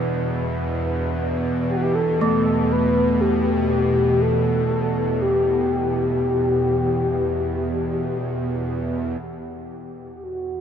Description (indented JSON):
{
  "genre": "dark ambient drone",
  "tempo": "60 BPM",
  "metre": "4/4",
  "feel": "straight",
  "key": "E minor",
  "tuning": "A4 = 440 Hz",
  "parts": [
    { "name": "mellow horn-like synth lead", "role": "melody", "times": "0.0-10.6 s", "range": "F#4 to B4", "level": "-23 LUFS", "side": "left 2 dB", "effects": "chorus, cassette tape, diffuse ambient delay" },
    { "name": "dark analog pad", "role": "sustained chords", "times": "0.0-9.2 s", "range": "G3 to F#5", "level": "-41 LUFS", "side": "equal", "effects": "none" },
    { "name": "bowed-like drone", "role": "drone", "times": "0.0-10.6 s", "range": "E2 to B2", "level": "-23 LUFS", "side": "right 1 dB", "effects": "built-in reverb" },
    { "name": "gamelan-type bronze metallophone", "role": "arpeggios", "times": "2.2-8.2 s", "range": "A3", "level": "-25 LUFS", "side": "right 1 dB", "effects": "diffuse ambient delay" },
    { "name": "quartz singing bowl", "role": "texture", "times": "9.2-10.6 s", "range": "F#5", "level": "-47 LUFS", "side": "right 6 dB", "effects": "none" }
  ],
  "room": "wet cathedral reverb, RT60 5.3 s",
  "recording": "none",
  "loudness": "-19 LUFS",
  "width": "side -8 dB against mid",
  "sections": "0.0-9.2 A section; 9.2-10.6 B section",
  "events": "none",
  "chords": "0.0 Emadd9; 9.2 Esus2"
}